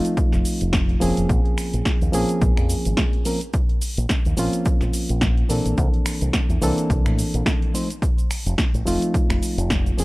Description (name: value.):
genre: nu-disco, nu disco.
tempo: 107 BPM.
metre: 4/4.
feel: swing 56% on 16ths.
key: Bb minor.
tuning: A4 = 439 Hz.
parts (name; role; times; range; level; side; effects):
reed electric piano; accompaniment; 0.0-10.0 s; E3 to C5; -24 LUFS; equal; overdrive, analog delay.
house drum kit; drums; 0.0-10.0 s; cabasa, finger snaps, hi-hat, snare drum; -27 LUFS; equal; none.
electronic kick drum; drums; 0.2-9.8 s; none; -21 LUFS; equal; none.
fingered electric bass with an envelope filter; bass; 0.3-10.0 s; F1 to Bb2; -23 LUFS; equal; none.
room: little or no reverb.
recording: dry, gritty hardware recording.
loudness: -18 LUFS.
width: side -21 dB against mid.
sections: 0.0-10.0 A section.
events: none.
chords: 0.0 F7; 1.3 Bbm9; 5.8 C13; 7.7 F7.